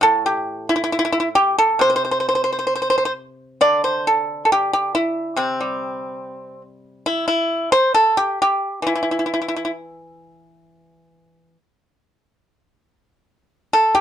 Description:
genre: chinese traditional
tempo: 65-71 BPM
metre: 2/4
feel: rubato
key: C gong mode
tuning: A4 = 440 Hz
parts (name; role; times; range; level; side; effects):
- pipa; solo; 0.0-14.0 s; A2 to D5; -17 LUFS; equal; none
room: light reverb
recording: dark, warm production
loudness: -17 LUFS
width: side -10 dB against mid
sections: 0.0-3.6 A section; 3.6-14.0 B section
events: none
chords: none

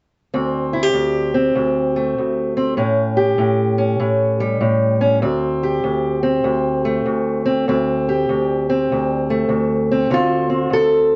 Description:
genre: acoustic country blues, solo or duo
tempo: 98 BPM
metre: 4/4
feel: swing 64% on 8ths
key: unclear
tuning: A4 = 445 Hz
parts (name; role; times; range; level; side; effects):
- fingerpicked steel-string acoustic guitar; solo; 0.3-11.2 s; D2 to A4; -18 LUFS; equal; none
room: moderate small room reverb, RT60 0.6 s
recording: nothing above 7.9 kHz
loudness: -18 LUFS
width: mono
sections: 0.3-10.1 A section; 10.1-11.2 B section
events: none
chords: 0.3 D5; 2.8 A7; 5.2 D5; 10.1 D7(no3)

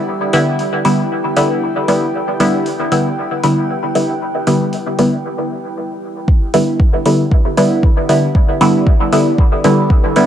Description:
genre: dub techno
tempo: 116 BPM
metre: 4/4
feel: swing 53% on 16ths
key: E minor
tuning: A4 = 438 Hz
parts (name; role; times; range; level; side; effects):
- deep dark ambient pad; sustained chords; 0.0-10.3 s; E4 to G5; -24 LUFS; right 1 dB; chorus, built-in reverb, sidechain pumping
- metallic inharmonic drone; texture; 0.0-5.3 s; G3 to B4; -31 LUFS; equal; chorus, built-in reverb, sidechain pumping
- filtered dub chord stab; stabs; 0.3-10.3 s; D3 to E4; -14 LUFS; equal; chorus, phaser, sidechain pumping, dub echo
- electronic hi-hat; drums; 0.3-10.3 s; none; -28 LUFS; equal; none
- electronic kick drum; drums; 6.3-10.0 s; none; -12 LUFS; equal; none
room: light reverb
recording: dry, gritty hardware recording, cassette tape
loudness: -12 LUFS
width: side -10 dB against mid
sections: 0.0-6.3 A section; 6.3-10.3 B section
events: break 5.2-6.3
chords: 0.0 Em7

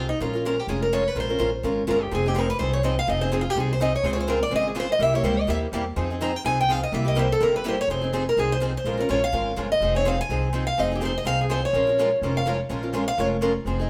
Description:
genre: acoustic string swing (jazz manouche)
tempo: 250 BPM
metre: 4/4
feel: swing 55% on 8ths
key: F minor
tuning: A4 = 439 Hz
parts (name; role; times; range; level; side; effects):
- picked steel-string acoustic guitar; melody; 0.0-13.3 s; Eb4 to Bb5; -26 LUFS; equal; none
- picked acoustic archtop guitar; accompaniment; 0.0-13.9 s; C3 to Bb4; -31 LUFS; equal; none
- upright bass; bass; 0.0-13.9 s; F1 to F2; -30 LUFS; equal; none
- picked steel-string acoustic guitar; accompaniment; 2.1-13.8 s; C3 to Bb4; -35 LUFS; equal; none
room: wet studio reverb, RT60 0.8 s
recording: band playing live in one room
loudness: -24 LUFS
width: mono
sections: 0.0-7.9 A section; 7.9-13.9 A section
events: steel-string acoustic guitar solo 0.0-13.9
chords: 0.2 Bbm7; 2.1 Fm7; 4.0 Dbmaj7; 5.0 C7#9; 6.0 Fm7; 6.9 C7; 7.9 Fm7; 8.8 Bbm7; 9.8 Fm7; 11.7 Bbm7

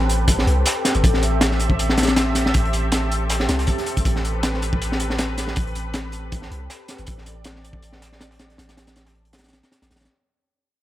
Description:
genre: drum and bass, jungle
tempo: 159 BPM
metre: 4/4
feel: swing 55% on 16ths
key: A minor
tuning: A4 = 445 Hz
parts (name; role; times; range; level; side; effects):
- lush unison pad; sustained chords; 0.0-10.1 s; C4 to E5; -26 LUFS; left 1 dB; chorus, phaser
- long sustained 808-style bass; bass; 0.0-10.1 s; G1 to C2; -23 LUFS; equal; none
- crunchy breakbeat drum kit; drums; 0.1-10.1 s; hi-hat, kick drum, snare drum; -21 LUFS; equal; none
- crunchy breakbeat drum kit; drums; 0.1-10.1 s; hi-hat, snare drum; -31 LUFS; equal; high-pass filter on hats, high-pass filter on snare, high-pass filter on room
room: light reverb, studio reverb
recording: none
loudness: -18 LUFS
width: side -14 dB against mid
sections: 0.0-10.1 A section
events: fade-out 0.0-10.1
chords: 0.0 Am9

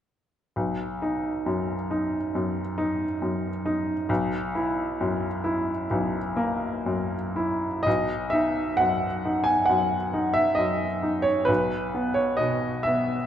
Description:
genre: classical, romantic nocturne for solo piano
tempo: 58-69 BPM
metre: 4/4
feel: rubato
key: B major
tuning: A4 = 441 Hz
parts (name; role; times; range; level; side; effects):
- clear upright piano; solo; 0.6-13.3 s; B1 to G#5; -23 LUFS; equal; none
room: moderate concert hall reverb, RT60 1.9 s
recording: dark, warm production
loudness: -23 LUFS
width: side -10 dB against mid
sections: 0.6-7.9 A section; 7.9-13.3 B section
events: none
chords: 0.6 B; 4.1 F#7/B; 7.9 B; 11.5 N.C.

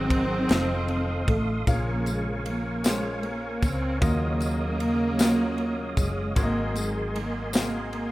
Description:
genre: slow gospel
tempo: 51 BPM (dotted quarters)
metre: 6/8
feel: straight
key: unclear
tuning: A4 = 440 Hz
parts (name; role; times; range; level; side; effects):
- dark studio string section; melody; 0.0-8.1 s; Db3 to C4; -27 LUFS; right 1 dB; none
- clear baby grand piano; accompaniment; 0.0-8.1 s; Ab2 to F5; -34 LUFS; left 2 dB; none
- tonewheel organ; sustained chords; 0.0-8.1 s; Ab4 to Eb6; -35 LUFS; right 2 dB; slow rotary speaker, chorus vibrato
- hollow-body short-scale fingered electric bass; bass; 0.0-8.1 s; F1 to Eb2; -31 LUFS; equal; none
- crisp fusion drum kit; drums; 0.1-8.1 s; kick drum, ride cymbal, snare drum; -26 LUFS; equal; none
- tambourine; percussion; 1.7-7.9 s; none; -38 LUFS; left 5 dB; none
room: small room ambience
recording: rough home demo mix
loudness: -23 LUFS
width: side -17 dB against mid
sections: 0.0-8.1 A section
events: none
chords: 0.5 F7; 1.7 Bbm7; 4.0 Ebm9; 6.4 Ab9

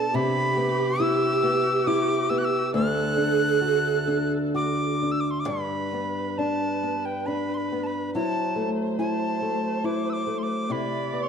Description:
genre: celtic folk, Celtic slow air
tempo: 62-71 BPM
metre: 3/4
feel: rubato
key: G major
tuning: A4 = 440 Hz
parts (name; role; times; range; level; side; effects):
- breathy bright mid whistle; melody; 0.0-11.3 s; G5 to F#6; -28 LUFS; equal; none
- dark viola; second line; 0.0-11.3 s; G4 to D5; -28 LUFS; right 5 dB; none
- nylon-string guitar; accompaniment; 0.0-11.3 s; D2 to F#4; -26 LUFS; left 2 dB; none
room: moderate scoring stage reverb, RT60 1.9 s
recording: dark, warm production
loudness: -22 LUFS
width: side -7 dB against mid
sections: 0.0-5.5 A section; 5.5-11.3 B section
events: none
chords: 0.2 Cmaj7; 2.7 D; 5.5 G; 8.1 F#m7b5; 10.7 Cmaj7

